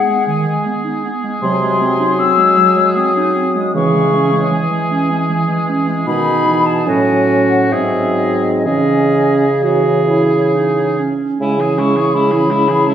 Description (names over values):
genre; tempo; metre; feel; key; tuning
classical, slow romantic movement for wind quintet; 60-84 BPM; 3/4; rubato; C# minor; A4 = 440 Hz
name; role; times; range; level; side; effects
mellow hollow concert flute; melody; 0.0-12.9 s; C#5 to E6; -18 LUFS; left 5 dB; none
clear oboe; second line; 0.0-12.9 s; E4 to G#4; -22 LUFS; left 1 dB; none
mellow French horn; accompaniment; 0.0-12.9 s; D#3 to G#3; -20 LUFS; equal; none
mellow clarinet; accompaniment; 0.0-12.9 s; D#3 to F#4; -18 LUFS; right 4 dB; none
warm bassoon; bass; 1.4-12.9 s; G#2 to C#3; -17 LUFS; right 1 dB; none
room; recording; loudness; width
wet recital hall reverb, RT60 1.5 s; heard from further back in the room; -12 LUFS; side -9 dB against mid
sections
0.0-11.4 A section; 11.4-12.9 B section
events
none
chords
0.0 G#m; 1.4 G#7/B#; 3.8 C#m; 6.1 G#m/B; 6.9 F#m/A; 7.7 G#7; 8.7 C#m